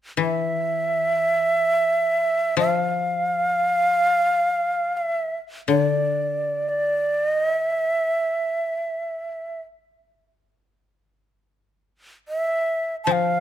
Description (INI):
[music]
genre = japanese traditional, Japanese chamber music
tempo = free time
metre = none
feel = none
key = unclear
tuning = A4 = 440 Hz
[part]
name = breathy shakuhachi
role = melody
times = 0.2-13.4 s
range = D5 to A5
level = -21 LUFS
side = right 1 dB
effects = none
[part]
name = koto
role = accompaniment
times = 0.2-8.5, 13.1-13.4 s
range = D3 to F3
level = -25 LUFS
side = left 9 dB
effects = none
[sound]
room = light reverb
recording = close, detailed microphones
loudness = -20 LUFS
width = side -11 dB against mid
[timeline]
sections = 0.0-13.4 A section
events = none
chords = none